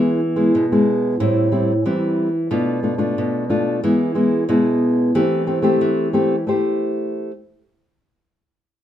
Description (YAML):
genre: samba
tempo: 91 BPM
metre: 4/4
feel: straight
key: A minor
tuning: A4 = 440 Hz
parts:
  - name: nylon-string guitar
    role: solo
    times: 0.0-7.3 s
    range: A2 to C5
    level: -16 LUFS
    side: equal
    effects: none
room: wet studio reverb, RT60 0.8 s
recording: minimal, uncompressed stereo recording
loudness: -16 LUFS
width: side -11 dB against mid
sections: 0.0-1.2 A section; 1.2-6.5 B section; 6.5-8.8 C section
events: none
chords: 0.0 E; 1.2 Am7; 2.5 Bm7b5; 3.8 E; 5.1 Am7/E; 6.5 Am7